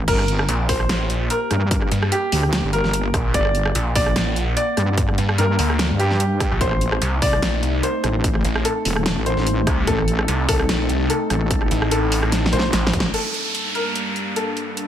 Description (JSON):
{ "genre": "heavy wobble dubstep", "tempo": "147 BPM", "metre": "4/4", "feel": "swing 54% on 16ths, half-time", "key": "G harmonic minor", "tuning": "A4 = 440 Hz", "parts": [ { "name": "evolving wavetable pad", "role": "sustained chords", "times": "0.0-14.9 s", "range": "C2 to A5", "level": "-28 LUFS", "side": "left 2 dB", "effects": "chorus, built-in reverb, sidechain pumping" }, { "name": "wobble bass", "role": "bass", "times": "0.0-13.1 s", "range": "Eb1 to G2", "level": "-21 LUFS", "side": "equal", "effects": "chorus, overdrive" }, { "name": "warm baby grand piano", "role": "melody", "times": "0.1-14.9 s", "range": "G4 to D5", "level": "-24 LUFS", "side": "equal", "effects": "dub echo" }, { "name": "dubstep drum kit", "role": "drums", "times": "0.1-14.9 s", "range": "crash cymbal, hi-hat, rim click, snare drum", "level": "-25 LUFS", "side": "right 1 dB", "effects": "none" }, { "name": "electronic kick drum", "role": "drums", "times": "0.1-13.0 s", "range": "none", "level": "-23 LUFS", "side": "equal", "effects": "none" }, { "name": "snarling distorted saw bass", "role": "bass", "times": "0.5-12.9 s", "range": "A1 to G2", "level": "-22 LUFS", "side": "equal", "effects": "distortion, overdrive" }, { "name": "downlifter", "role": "sound effects", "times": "13.1-14.9 s", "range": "none", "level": "-25 LUFS", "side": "right 1 dB", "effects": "none" } ], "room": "light reverb, digital ambience", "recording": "none", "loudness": "-17 LUFS", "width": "side -10 dB against mid", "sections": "0.0-13.1 A section; 13.1-14.9 B section", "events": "drop 0.0-13.1; drum fill 12.3-13.1; band accent 13.0; filter sweep on ambient pad 13.1-14.9", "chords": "0.1 Gm; 6.6 Adim; 13.1 Gmadd9", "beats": "| 0.08 0.49 0.89 1.30 | 1.71 2.12 2.53 2.94 | 3.34 3.75 4.16 4.57 | 4.98 5.38 5.79 6.20 | 6.61 7.02 7.42 7.83 | 8.24 8.65 9.06 9.47 | 9.87 10.28 10.69 11.10 | 11.51 11.91 12.32 12.73 | 13.14 13.55 13.96 14.36 | 14.77" }